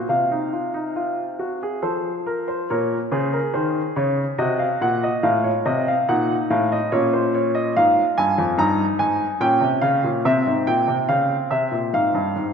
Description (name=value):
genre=classical, baroque-style 3-part fugue for grand piano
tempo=71 BPM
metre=3/4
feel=straight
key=Bb minor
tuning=A4 = 439 Hz
part: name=warm baby grand piano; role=solo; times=0.0-12.5 s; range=F2 to Bb5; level=-18 LUFS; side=equal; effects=none
room=wet concert hall reverb, RT60 1.9 s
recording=none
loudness=-18 LUFS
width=side -6 dB against mid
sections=0.0-2.7 A section; 2.7-12.5 B section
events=none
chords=0.1 F5/C; 1.8 F; 2.7 Bbm; 4.4 Cdim; 5.2 F/A; 6.9 Bbm; 7.7 Fm; 9.4 Gdim/Bb; 10.2 C; 11.9 Fm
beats=| 0.09 0.96 1.82 | 2.68 3.54 4.38 | 5.22 6.07 6.91 | 7.74 8.57 9.40 | 10.23 11.07 11.91